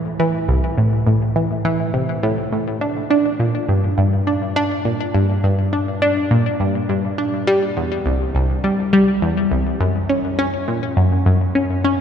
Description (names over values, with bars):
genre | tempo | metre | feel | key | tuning
ambient | 103 BPM | 4/4 | straight | unclear | A4 = 440 Hz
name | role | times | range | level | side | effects
analog pluck | solo | 0.0-12.0 s | C2 to D4 | -16 LUFS | equal | chorus, phaser, ping-pong delay
room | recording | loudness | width
wet cathedral reverb, RT60 5.2 s | in a vast, echoing space | -16 LUFS | side -8 dB against mid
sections
0.0-12.0 A section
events
none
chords
none